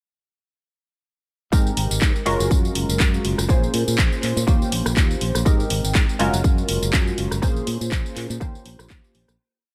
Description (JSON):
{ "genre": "filtered disco house", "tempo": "122 BPM", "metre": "4/4", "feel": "swing 55% on 16ths", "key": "Ab major", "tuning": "A4 = 438 Hz", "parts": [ { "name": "funky polysynth comp", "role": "accompaniment", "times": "1.5-9.4 s", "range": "Ab3 to C5", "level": "-28 LUFS", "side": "equal", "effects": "chorus, phaser, cassette tape, sidechain pumping" }, { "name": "fingered electric bass", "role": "bass", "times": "1.5-9.4 s", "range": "Gb1 to Bb2", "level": "-27 LUFS", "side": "equal", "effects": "sidechain pumping" }, { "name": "electronic kick drum", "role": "drums", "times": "1.5-9.0 s", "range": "none", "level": "-21 LUFS", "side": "equal", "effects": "none" }, { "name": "punchy analog drum machine", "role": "drums", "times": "1.5-9.4 s", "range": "handclaps, hi-hat, rim click, tambourine", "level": "-28 LUFS", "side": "equal", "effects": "sidechain pumping on perc, sidechain pumping on hats" } ], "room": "little or no reverb", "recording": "none", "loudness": "-21 LUFS", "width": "mono", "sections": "1.5-9.4 drop", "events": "drop 1.5-9.4; fade-out 6.8-9.4", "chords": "1.5 Abmaj9; 2.3 Gbmaj9; 3.5 Bbm9; 4.5 Eb13; 5.5 Abmaj9; 6.2 Gbmaj9; 7.4 Bbm9; 8.4 Eb13" }